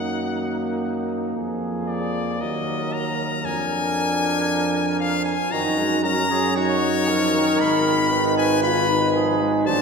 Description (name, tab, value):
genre	classical, brass quintet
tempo	116 BPM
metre	4/4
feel	straight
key	Eb minor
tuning	A4 = 441 Hz
part	brilliant trumpet	melody	0.0-9.8 s	Db5 to Cb6	-24 LUFS	left 4 dB	none
part	mellow flugelhorn	second line	0.0-9.8 s	Eb4 to C5	-28 LUFS	right 4 dB	none
part	warm French horn	accompaniment	0.0-9.8 s	Bb3 to F4	-25 LUFS	equal	none
part	warm trombone	accompaniment	0.0-9.8 s	Eb3 to Ab3	-29 LUFS	right 2 dB	none
part	mellow bass trombone	bass	0.0-9.8 s	Ab1 to Gb2	-27 LUFS	equal	none
room	wet church reverb, RT60 2.9 s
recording	minimal, uncompressed stereo recording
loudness	-19 LUFS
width	side -5 dB against mid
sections	0.0-9.8 A section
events	none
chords	0.0 Ebm/Gb; 1.4 Bb7/F; 2.4 Ebm; 3.5 Bb7/F; 5.5 Ebm/Gb; 7.6 Fm7b5/Ab